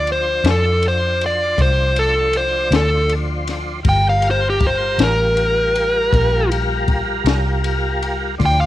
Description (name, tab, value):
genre	slow blues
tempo	53 BPM (dotted quarters)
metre	12/8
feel	straight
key	unclear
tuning	A4 = 444 Hz
part	dark smooth lead guitar	melody	0.0-8.7 s	G4 to G5	-17 LUFS	equal	overdrive, slapback echo
part	tonewheel organ	sustained chords	0.0-8.7 s	F3 to C5	-24 LUFS	equal	slow rotary speaker, chorus vibrato
part	vintage muted fingered electric bass	bass	0.0-8.7 s	G1 to F2	-20 LUFS	equal	none
part	compact cocktail drum kit	drums	0.1-8.6 s	kick drum, ride cymbal, snare drum	-23 LUFS	left 3 dB	none
room	small room ambience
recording	1960s-style stereo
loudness	-15 LUFS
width	side -14 dB against mid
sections	0.0-8.7 A section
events	lead electric guitar solo 0.0-8.7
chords	0.0 Dm7; 3.9 Gm7